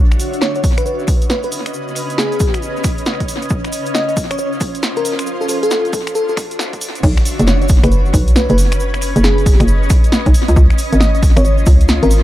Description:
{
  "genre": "UK garage, two-step garage",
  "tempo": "136 BPM",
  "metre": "4/4",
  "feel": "swing 64% on 16ths",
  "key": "B major",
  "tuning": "A4 = 440 Hz",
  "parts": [
    { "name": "granular cloud pad", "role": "texture", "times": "0.0-12.2 s", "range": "C#4 to D#5", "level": "-22 LUFS", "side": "equal", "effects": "built-in reverb, sidechain pumping" },
    { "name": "punchy analog drum machine", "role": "drums", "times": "0.1-12.2 s", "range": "crash cymbal, finger snaps, hi-hat, snare drum", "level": "-21 LUFS", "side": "equal", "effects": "high-pass filter on snare, high-pass filter on hats, high-pass filter on cymbals, tape echo" },
    { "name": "tube shaker", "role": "percussion", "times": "0.1-12.2 s", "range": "none", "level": "-30 LUFS", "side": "right 3 dB", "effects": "none" },
    { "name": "bell-like FM electric piano", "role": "melody", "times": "0.4-12.2 s", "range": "G#4 to D#5", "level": "-21 LUFS", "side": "left 1 dB", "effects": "chorus, tremolo, tape echo" },
    { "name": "electronic kick drum", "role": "drums", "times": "0.6-11.8 s", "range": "none", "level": "-13 LUFS", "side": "equal", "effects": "none" },
    { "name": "hollow knocking FM bass", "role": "bass", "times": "7.0-12.2 s", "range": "F#1 to C#2", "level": "-12 LUFS", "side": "equal", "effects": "tube saturation" }
  ],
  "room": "light reverb, digital ambience",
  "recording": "echo-heavy mix, high-pass filter",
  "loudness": "-12 LUFS",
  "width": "side -14 dB against mid",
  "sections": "0.0-7.0 A section; 7.0-12.2 B section",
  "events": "build-up 0.0-7.0; filter sweep 0.0-7.0; drop 7.0-12.2",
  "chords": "0.0 Badd9; 3.3 C#maj9; 5.3 Dmaj9; 7.0 Badd9; 10.3 C#maj9",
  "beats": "0.42 0.86 1.30 | 1.74 2.18 2.62 3.06 | 3.50 3.95 4.39 4.83 | 5.27 5.71 6.15 6.59 | 7.04 7.48 7.92 8.36 | 8.80 9.24 9.68 10.12 | 10.56 11.01 11.45 11.89"
}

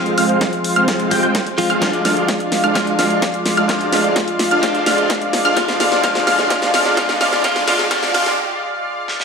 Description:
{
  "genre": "EDM, festival progressive house",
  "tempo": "128 BPM",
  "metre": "4/4",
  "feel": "straight",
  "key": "unclear",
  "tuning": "A4 = 442 Hz",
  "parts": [
    { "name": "direct-recorded clean electric guitar", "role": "accompaniment", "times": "0.0-8.4 s", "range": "F3 to G4", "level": "-21 LUFS", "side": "left 2 dB", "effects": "phaser, sidechain pumping, tape echo" },
    { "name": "lush unison pad", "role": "sustained chords", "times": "0.0-9.2 s", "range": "Ab3 to F5", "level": "-23 LUFS", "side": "right 1 dB", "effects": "chorus, sidechain pumping" },
    { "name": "wide unison pluck", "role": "arpeggios", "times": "0.0-8.3 s", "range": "F6 to G6", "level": "-21 LUFS", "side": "equal", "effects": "sidechain pumping, tape echo" },
    { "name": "supersaw chords", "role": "riff", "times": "0.0-8.3 s", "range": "Ab3 to G5", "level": "-20 LUFS", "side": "right 1 dB", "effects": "sidechain pumping, low-pass filter, tape echo" },
    { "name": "wide detuned saw bass", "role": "bass", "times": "0.0-8.4 s", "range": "D2 to F2", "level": "-31 LUFS", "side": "equal", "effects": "none" },
    { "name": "big-room dance drum kit", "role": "drums", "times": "0.1-9.2 s", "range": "hi-hat, snare drum", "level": "-21 LUFS", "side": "equal", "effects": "none" },
    { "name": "electronic kick drum", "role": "drums", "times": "0.4-8.0 s", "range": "none", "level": "-26 LUFS", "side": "equal", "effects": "none" },
    { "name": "riser", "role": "sound effects", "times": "5.2-8.4 s", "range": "none", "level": "-30 LUFS", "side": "right 2 dB", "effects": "none" }
  ],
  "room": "wet digital room reverb, RT60 1.0 s",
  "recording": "high-pass filter",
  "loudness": "-14 LUFS",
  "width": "side -5 dB against mid",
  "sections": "0.0-9.2 A section",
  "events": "build-up 0.0-9.2; drum fill 0.0-8.4, 9.1; filter sweep on supersaw synth 0.0-9.2; filter sweep on synth pluck 0.0-9.2; filter sweep 0.0-9.2; break 8.4-9.2",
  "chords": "0.0 Fm; 1.8 Ddim",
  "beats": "0.41 0.88 1.35 | 1.82 2.29 2.75 3.22 | 3.69 4.16 4.63 5.10 | 5.57 6.04 6.50 6.97 | 7.44 7.91 8.38 8.85"
}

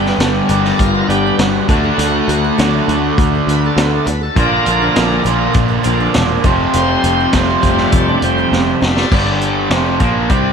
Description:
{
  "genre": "classic rock",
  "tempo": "101 BPM",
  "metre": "4/4",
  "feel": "straight",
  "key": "unclear",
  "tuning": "A4 = 440 Hz",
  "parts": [
    { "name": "picked twelve-string acoustic guitar", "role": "accompaniment", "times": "0.0-9.1 s", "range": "G2 to Bb4", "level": "-25 LUFS", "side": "right 8 dB", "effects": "none" },
    { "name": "cranked stack guitar", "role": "riff", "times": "0.0-10.5 s", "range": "F2 to G4", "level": "-18 LUFS", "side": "right 11 dB", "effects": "overdrive" },
    { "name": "distorted electric guitar", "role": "riff", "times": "0.0-10.5 s", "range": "F2 to D4", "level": "-18 LUFS", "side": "left 9 dB", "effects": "distortion" },
    { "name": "picked electric bass", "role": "bass", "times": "0.0-10.5 s", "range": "E1 to D2", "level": "-19 LUFS", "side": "equal", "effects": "none" },
    { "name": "vintage drum kit", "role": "drums", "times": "0.1-10.4 s", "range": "crash cymbal, hi-hat, kick drum, snare drum", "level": "-18 LUFS", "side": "equal", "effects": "none" },
    { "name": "bright tonewheel organ", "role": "sustained chords", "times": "0.5-10.5 s", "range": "F3 to F5", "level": "-20 LUFS", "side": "equal", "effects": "slow rotary speaker, overdrive" }
  ],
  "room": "moderate echo chamber reverb, RT60 2.4 s",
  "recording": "none",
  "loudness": "-11 LUFS",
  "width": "side -6 dB against mid",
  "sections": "0.0-9.1 A section; 9.1-10.5 B section",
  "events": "tonewheel organ solo 0.0-9.1; drum fill 8.5-9.1",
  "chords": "0.0 G; 1.7 D; 4.4 Bb; 6.5 Fadd9; 9.1 G",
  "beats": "0.20 0.80 1.40 | 1.99 2.59 3.18 3.78 | 4.37 4.97 5.56 6.16 | 6.75 7.34 7.93 8.53 | 9.12 9.71 10.30"
}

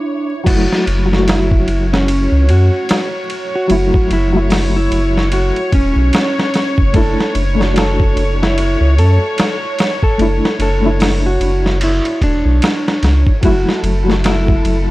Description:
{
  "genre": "trip hop",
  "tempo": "74 BPM",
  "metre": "4/4",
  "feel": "swing 59% on 16ths",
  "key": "F# minor",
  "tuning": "A4 = 440 Hz",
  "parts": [
    { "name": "clean lap steel guitar", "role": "melody", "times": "0.0-14.8 s", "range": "C#4 to A4", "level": "-19 LUFS", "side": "right 1 dB", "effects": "vintage 12-bit sampler grit, tape echo" },
    { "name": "felt-muted upright piano", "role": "accompaniment", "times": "0.0-14.9 s", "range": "F#2 to F#4", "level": "-20 LUFS", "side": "left 1 dB", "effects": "tremolo, vintage 12-bit sampler grit" },
    { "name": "dark studio violin section", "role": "sustained chords", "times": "0.0-14.9 s", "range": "A3 to C#5", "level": "-24 LUFS", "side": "equal", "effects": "none" },
    { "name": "wind-like tuned noise texture", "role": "texture", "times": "0.0-0.5, 14.0-14.9 s", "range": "E4", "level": "-31 LUFS", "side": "equal", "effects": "none" },
    { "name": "round analog bass", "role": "bass", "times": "0.5-14.9 s", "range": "E1 to F#2", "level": "-15 LUFS", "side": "equal", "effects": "none" },
    { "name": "dusty soul sampler-style drum kit", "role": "drums", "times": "0.5-14.9 s", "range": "crash cymbal, hi-hat, kick drum, ride cymbal, snare drum", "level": "-17 LUFS", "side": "equal", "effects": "small room ambience" }
  ],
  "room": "digital ambience",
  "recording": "dry, gritty hardware recording, vinyl crackle",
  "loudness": "-12 LUFS",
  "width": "side -18 dB against mid",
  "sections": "0.5-14.9 A section",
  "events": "none",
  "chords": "0.5 F#m7; 6.9 Dsus2/F#; 13.4 F#m7",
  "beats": "| 0.46 1.27 2.08 2.89 | 3.70 4.51 5.32 6.13 | 6.94 7.75 8.57 9.38 | 10.19 11.00 11.81 12.62 | 13.43 14.24"
}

